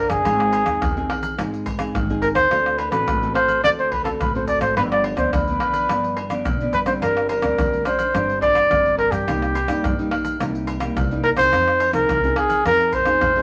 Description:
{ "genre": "samba and choro", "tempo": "106 BPM", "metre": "4/4", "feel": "straight", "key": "unclear", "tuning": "A4 = 440 Hz", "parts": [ { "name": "breathy trumpet", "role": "melody", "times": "0.0-13.4 s", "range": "G4 to D5", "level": "-21 LUFS", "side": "equal", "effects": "none" }, { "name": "nylon-string guitar", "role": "accompaniment", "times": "0.0-13.4 s", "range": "G2 to C5", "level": "-29 LUFS", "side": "equal", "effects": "none" }, { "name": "upright bass", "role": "bass", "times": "0.0-13.4 s", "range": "G1 to B2", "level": "-31 LUFS", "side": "equal", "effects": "none" }, { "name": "tube shaker, pandeiro, tamborim, agogo bells and surdo", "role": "percussion", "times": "0.1-13.4 s", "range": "none", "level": "-28 LUFS", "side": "equal", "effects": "none" } ], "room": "moderate studio reverb, RT60 0.8 s", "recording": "none", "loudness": "-20 LUFS", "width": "mono", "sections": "0.0-13.4 A section", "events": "none", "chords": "0.3 Ab; 2.5 D7; 4.8 G7; 7.0 Gsus4; 9.3 Cm7; 11.5 Fm7" }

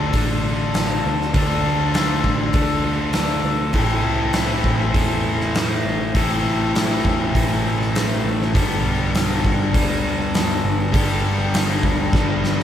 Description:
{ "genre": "classic rock", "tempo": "100 BPM", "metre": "4/4", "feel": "straight", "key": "A minor", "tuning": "A4 = 440 Hz", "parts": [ { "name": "overdriven electric guitar", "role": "riff", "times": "0.0-12.6 s", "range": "G2 to A4", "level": "-22 LUFS", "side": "left 4 dB", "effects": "spring reverb" }, { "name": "sludgy distorted guitar", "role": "riff", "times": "0.0-12.6 s", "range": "G2 to D4", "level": "-24 LUFS", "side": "right 4 dB", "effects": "overdrive" }, { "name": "hollow-body short-scale picked electric bass", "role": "bass", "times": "0.0-12.6 s", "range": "G1 to E2", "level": "-26 LUFS", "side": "equal", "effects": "none" }, { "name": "huge arena drum kit", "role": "drums", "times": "0.1-12.6 s", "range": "hi-hat, kick drum, snare drum", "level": "-22 LUFS", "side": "equal", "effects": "none" } ], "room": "moderate small room reverb, RT60 0.5 s", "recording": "band playing live in one room", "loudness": "-17 LUFS", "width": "side -10 dB against mid", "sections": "0.0-12.6 A section", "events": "drum fill 12.1-12.6", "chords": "0.0 Dm; 3.7 Am; 8.5 G" }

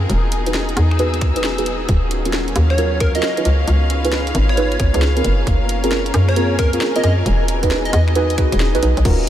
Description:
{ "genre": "UK garage, two-step garage", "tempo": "134 BPM", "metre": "4/4", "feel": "swing 65% on 16ths", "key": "unclear", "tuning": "A4 = 441 Hz", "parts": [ { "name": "airy breathy pad", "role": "sustained chords", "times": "0.0-9.3 s", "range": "Gb3 to F5", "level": "-29 LUFS", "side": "left 1 dB", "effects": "chorus, sidechain pumping" }, { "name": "hollow knocking FM bass", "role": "bass", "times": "0.0-9.3 s", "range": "Eb1 to Gb2", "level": "-17 LUFS", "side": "equal", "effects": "tube saturation, sidechain pumping" }, { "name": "rich studio string section", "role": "texture", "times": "0.0-9.1 s", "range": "E3 to E6", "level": "-26 LUFS", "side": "left 1 dB", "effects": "sidechain pumping" }, { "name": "garage drum kit", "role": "drums", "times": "0.1-9.2 s", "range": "crash cymbal, finger snaps, hi-hat, snare drum", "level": "-26 LUFS", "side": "equal", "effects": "overdrive, small room reverb" }, { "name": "deep mellow chord stab", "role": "stabs", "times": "0.5-9.3 s", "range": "C4 to B4", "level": "-21 LUFS", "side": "right 2 dB", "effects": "chorus, ping-pong delay" }, { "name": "electronic kick drum", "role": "drums", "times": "1.2-9.2 s", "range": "none", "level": "-17 LUFS", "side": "equal", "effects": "overdrive, small room reverb" }, { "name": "plucky unison lead", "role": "melody", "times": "2.7-8.0 s", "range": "Bb4 to Eb5", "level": "-25 LUFS", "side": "equal", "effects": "ping-pong delay" } ], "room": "moderate huge ambient reverb, RT60 8.2 s", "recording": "dreamy mix soaked in reverb", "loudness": "-14 LUFS", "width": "side -11 dB against mid", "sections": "0.0-9.1 A section", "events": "filter sweep on synth stab 0.0-9.1", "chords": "0.1 Emaj7; 1.9 Ebm9; 3.5 Db7; 5.2 Gbmaj9#11; 7.3 Emaj7" }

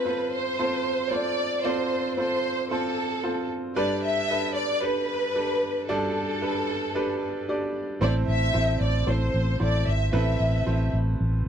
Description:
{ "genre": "piano-driven pop", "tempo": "113 BPM", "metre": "4/4", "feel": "straight", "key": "unclear", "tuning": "A4 = 440 Hz", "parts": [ { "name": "rich studio violin section", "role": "melody", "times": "0.0-10.9 s", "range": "A4 to E5", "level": "-27 LUFS", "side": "equal", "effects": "none" }, { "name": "bright upright piano", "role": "accompaniment", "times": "0.0-11.5 s", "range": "G2 to D5", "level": "-28 LUFS", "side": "right 2 dB", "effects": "none" }, { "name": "vintage muted fingered electric bass", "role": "bass", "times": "8.0-11.5 s", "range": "G#1 to A1", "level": "-23 LUFS", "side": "equal", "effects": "none" } ], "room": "light reverb", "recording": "dry, close 1970s-style studio recording", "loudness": "-23 LUFS", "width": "side -8 dB against mid", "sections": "0.0-11.5 A section", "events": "none", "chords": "0.0 F; 3.8 Gadd9; 8.0 Am" }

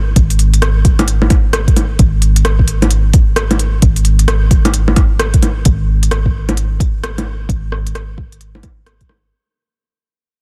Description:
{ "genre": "future garage", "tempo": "131 BPM", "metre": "4/4", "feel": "swing 62% on 16ths", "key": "unclear", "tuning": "A4 = 440 Hz", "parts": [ { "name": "soft 808-style bass", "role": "bass", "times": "0.0-9.3 s", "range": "G#1", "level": "-16 LUFS", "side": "equal", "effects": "sidechain pumping" }, { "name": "electronic kick drum", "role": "drums", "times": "0.2-9.1 s", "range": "none", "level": "-14 LUFS", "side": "equal", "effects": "none" }, { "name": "organic electronic drum kit", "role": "drums", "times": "0.2-9.2 s", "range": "bongos, hi-hat, rim click", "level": "-20 LUFS", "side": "equal", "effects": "soft clipping on snare" } ], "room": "little or no reverb", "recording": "dense, heavily limited modern master, vinyl crackle", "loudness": "-13 LUFS", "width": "mono", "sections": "0.0-5.7 A section; 5.7-9.3 B section", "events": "fade-out 5.7-9.3", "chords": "none" }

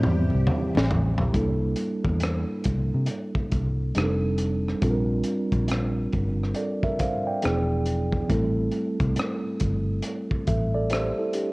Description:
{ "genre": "R&B, neo-soul", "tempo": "69 BPM", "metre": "4/4", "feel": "swing 63% on 16ths", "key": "unclear", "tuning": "A4 = 442 Hz", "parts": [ { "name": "mellow tine electric piano", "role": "accompaniment", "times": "0.0-11.5 s", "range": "E3 to G5", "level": "-27 LUFS", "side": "right 1 dB", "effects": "medium stereo tremolo" }, { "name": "string machine, full ensemble", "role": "sustained chords", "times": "0.0-1.3 s", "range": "G3 to G4", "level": "-37 LUFS", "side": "left 1 dB", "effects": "ensemble chorus" }, { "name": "vintage muted fingered electric bass", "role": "bass", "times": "0.0-11.1 s", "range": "E1 to C3", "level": "-26 LUFS", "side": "equal", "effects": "transformer saturation" }, { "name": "crunchy breakbeat drum kit", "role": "drums", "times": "0.0-11.5 s", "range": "hi-hat, kick drum, rim click, snare drum, toms", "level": "-28 LUFS", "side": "equal", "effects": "none" }, { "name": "congas", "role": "percussion", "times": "0.3-1.2 s", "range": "none", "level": "-35 LUFS", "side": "left 2 dB", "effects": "none" } ], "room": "small room ambience", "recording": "worn, warbling old tape, cassette tape, warbly pitch drift", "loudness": "-23 LUFS", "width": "side -23 dB against mid", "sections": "0.0-1.3 A section; 1.3-11.5 B section", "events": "drum fill 0.0-1.3; tine electric piano solo 0.0-1.3", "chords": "0.0 Am7; 1.3 C13; 3.9 F13; 4.8 Bb6; 7.4 E7b9; 8.3 Am7" }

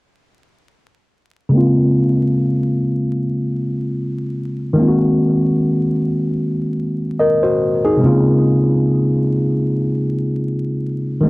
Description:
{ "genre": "hip hop", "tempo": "74 BPM", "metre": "4/4", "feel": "swing 59% on 16ths", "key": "Bb minor", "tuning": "A4 = 440 Hz", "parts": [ { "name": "tine electric piano", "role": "solo", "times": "1.5-11.3 s", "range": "C3 to Eb5", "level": "-14 LUFS", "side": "equal", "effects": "cassette tape, low-pass filter" } ], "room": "moderate studio reverb, RT60 0.6 s", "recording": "dark, warm production, vinyl crackle", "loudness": "-15 LUFS", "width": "side -22 dB against mid", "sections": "1.5-8.0 A section; 8.0-11.3 B section", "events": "filter sweep on tine electric piano 1.5-8.0", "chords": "1.5 Bbm9; 4.8 Ab9; 8.0 Bbm9" }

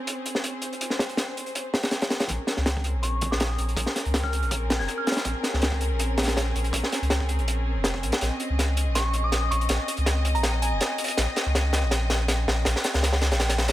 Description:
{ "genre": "drum and bass, jungle", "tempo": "162 BPM", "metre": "4/4", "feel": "swing 54% on 16ths", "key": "Bb minor", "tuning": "A4 = 438 Hz", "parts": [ { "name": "warm chamber string section", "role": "sustained chords", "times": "0.0-13.7 s", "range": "C4 to Eb5", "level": "-32 LUFS", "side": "left 1 dB", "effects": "none" }, { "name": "crunchy breakbeat drum kit", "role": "drums", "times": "0.1-13.7 s", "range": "hi-hat, kick drum, snare drum", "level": "-26 LUFS", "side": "equal", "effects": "high-pass filter on kick, high-pass filter on hats, high-pass filter on snare, high-pass filter on room" }, { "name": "soft dub sub bass", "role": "bass", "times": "2.3-13.7 s", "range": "F1 to Db2", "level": "-25 LUFS", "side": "equal", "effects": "none" }, { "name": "glassy synth bell", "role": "melody", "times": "3.0-5.1, 9.0-10.9 s", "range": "Ab5 to Ab6", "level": "-31 LUFS", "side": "equal", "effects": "chorus, tremolo, low-pass filter, dub echo" } ], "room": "light reverb, small room ambience", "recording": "none", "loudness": "-23 LUFS", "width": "side -14 dB against mid", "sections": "0.0-2.3 A section; 2.3-13.7 B section", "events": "build-up 2.3-13.7; filter sweep on synth bell 2.3-13.7; drum fill 8.2-13.7", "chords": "0.0 Bbm9 (rootless); 2.3 Bbm9" }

